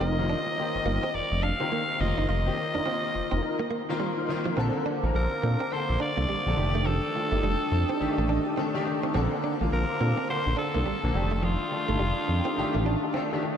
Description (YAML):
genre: R&B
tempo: 105 BPM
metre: 4/4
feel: swing 61% on 16ths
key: Bb major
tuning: A4 = 440 Hz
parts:
  - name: raspy alto saxophone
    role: melody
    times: 0.0-13.4 s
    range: F4 to F5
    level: -31 LUFS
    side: left 1 dB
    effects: tape echo
  - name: clear concert grand piano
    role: accompaniment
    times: 0.0-13.6 s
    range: D3 to A5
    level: -32 LUFS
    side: left 2 dB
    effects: ensemble chorus
  - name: direct-recorded clean electric guitar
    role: riff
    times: 0.0-13.5 s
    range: F3 to F4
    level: -34 LUFS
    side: right 5 dB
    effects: wide subtle chorus
  - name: tonewheel organ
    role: stabs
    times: 0.0-13.5 s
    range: C4 to Bb4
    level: -35 LUFS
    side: left 1 dB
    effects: overdrive, chorus vibrato, slow rotary speaker, tape echo
  - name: smooth synth bass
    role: bass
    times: 0.0-13.0 s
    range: F1 to Bb2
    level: -27 LUFS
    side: equal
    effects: none
  - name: chorused pulse-width pad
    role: sustained chords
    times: 4.6-13.6 s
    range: D4 to Eb6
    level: -34 LUFS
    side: right 1 dB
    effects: none
room: moderate huge ambient reverb, RT60 4.5 s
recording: dreamy mix soaked in reverb, lossy compression artefacts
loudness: -24 LUFS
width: side -8 dB against mid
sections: 0.0-4.6 A section; 4.6-13.6 B section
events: grand piano fill 8.0-9.1, 12.6-13.6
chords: 0.0 F7sus4; 4.6 Bbmaj9; 6.6 F13; 9.1 Bbmaj9; 11.1 F13